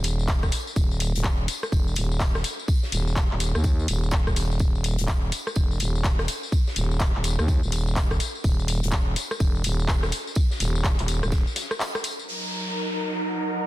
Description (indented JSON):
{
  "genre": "bass house",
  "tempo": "125 BPM",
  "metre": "4/4",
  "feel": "swing 62% on 16ths",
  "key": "Eb phrygian",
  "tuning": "A4 = 439 Hz",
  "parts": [
    { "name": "growling FM bass", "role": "bass", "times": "0.0-11.4 s", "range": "Eb1 to Eb2", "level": "-25 LUFS", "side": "equal", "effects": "overdrive, sidechain pumping" },
    { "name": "house drum kit", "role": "drums", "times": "0.0-12.3 s", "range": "handclaps, hi-hat, rim click, tambourine", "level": "-29 LUFS", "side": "left 2 dB", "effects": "none" },
    { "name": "oversized low-tuned drum kit", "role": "drums", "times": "0.0-12.2 s", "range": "hi-hat, snare drum, tambourine", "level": "-37 LUFS", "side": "right 1 dB", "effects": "high-pass filter on hats, high-pass filter on snare, high-pass filter on perc, high-pass filter on room" },
    { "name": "electronic kick drum", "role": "drums", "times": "0.3-11.4 s", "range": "none", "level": "-23 LUFS", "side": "equal", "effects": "none" },
    { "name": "rich studio string section", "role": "sustained chords", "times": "12.3-13.7 s", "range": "Gb3 to Bb4", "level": "-30 LUFS", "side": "equal", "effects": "sidechain pumping, low-pass filter" },
    { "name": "downlifter", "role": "sound effects", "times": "12.3-13.7 s", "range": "none", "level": "-31 LUFS", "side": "equal", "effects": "none" },
    { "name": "airy breathy pad", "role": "texture", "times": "12.4-13.7 s", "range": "Eb4 to Gb5", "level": "-30 LUFS", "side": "right 2 dB", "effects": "chorus, sidechain pumping" }
  ],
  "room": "small room ambience",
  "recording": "dense, heavily limited modern master",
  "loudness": "-22 LUFS",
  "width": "side -16 dB against mid",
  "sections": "0.0-12.3 A section; 12.3-13.7 B section",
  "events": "filter sweep on FM bass 0.0-12.3; break 11.8-12.3; filter sweep on string section 12.3-13.7",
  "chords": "0.0 N.C.; 12.3 Ebm",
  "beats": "0.28 | 0.76 1.24 1.72 2.20 | 2.68 3.16 3.64 4.12 | 4.60 5.08 5.56 6.04 | 6.52 7.00 7.48 7.96 | 8.44 8.92 9.40 9.88 | 10.36 10.84 11.32 11.80 | 12.28 12.76 13.24"
}